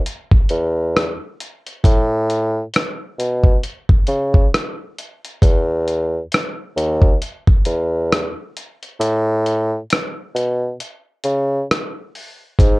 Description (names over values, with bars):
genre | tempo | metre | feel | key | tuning
lo-fi hip hop | 67 BPM | 4/4 | swing 56% on 16ths | unclear | A4 = 440 Hz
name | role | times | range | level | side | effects
dusty soul sampler-style drum kit | drums | 0.1-12.8 s | hi-hat, kick drum, rim click | -15 LUFS | equal | none
mellow bassoon | bass | 0.5-12.8 s | D#2 to C#3 | -18 LUFS | equal | none
room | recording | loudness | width
little or no reverb | cassette tape | -16 LUFS | side -24 dB against mid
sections
0.0-12.6 A section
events
break 9.0-12.6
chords
none